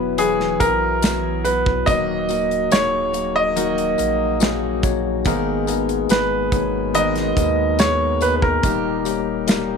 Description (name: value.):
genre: pop ballad.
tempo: 71 BPM.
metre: 4/4.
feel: straight.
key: G# minor.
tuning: A4 = 440 Hz.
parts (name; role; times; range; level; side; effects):
clear baby grand piano; melody; 0.0-9.8 s; G#4 to D#5; -20 LUFS; right 2 dB; tape echo.
tine electric piano; accompaniment; 0.0-9.8 s; G#2 to C#5; -23 LUFS; left 14 dB; fast stereo tremolo.
warm brass ensemble; sustained chords; 0.0-9.8 s; B2 to D#4; -30 LUFS; left 14 dB; none.
picked steel-string acoustic guitar; arpeggios; 0.0-9.8 s; G#2 to A#4; -28 LUFS; right 14 dB; none.
warm sub bass; bass; 0.0-9.8 s; D#1 to D#2; -28 LUFS; right 2 dB; none.
modern studio drum kit; drums; 0.2-9.7 s; hi-hat, kick drum, snare drum; -21 LUFS; right 1 dB; none.
tambourine; percussion; 0.6-9.7 s; none; -35 LUFS; left 16 dB; none.
room: light reverb, small room ambience.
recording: 1960s-style stereo with parts hard left and right.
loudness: -17 LUFS.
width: side -5 dB against mid.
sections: 0.0-9.8 A section.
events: none.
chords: 0.0 Esus2; 1.9 D#m; 5.3 G#madd9; 8.6 D#.